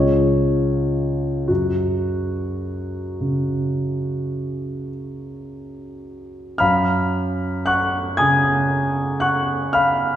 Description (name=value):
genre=classical, impressionist solo piano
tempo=34-39 BPM (dotted quarters)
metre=9/8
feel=rubato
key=unclear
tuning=A4 = 440 Hz
part: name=clear concert grand piano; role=solo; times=0.0-10.2 s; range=C#2 to G#6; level=-19 LUFS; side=equal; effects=none
room=wet concert hall reverb, RT60 1.9 s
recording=heard from further back in the room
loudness=-18 LUFS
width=side -11 dB against mid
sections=0.0-6.6 A section; 6.6-10.2 A section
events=none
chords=0.0 C#; 1.5 F#5; 6.6 F#maj7(no3)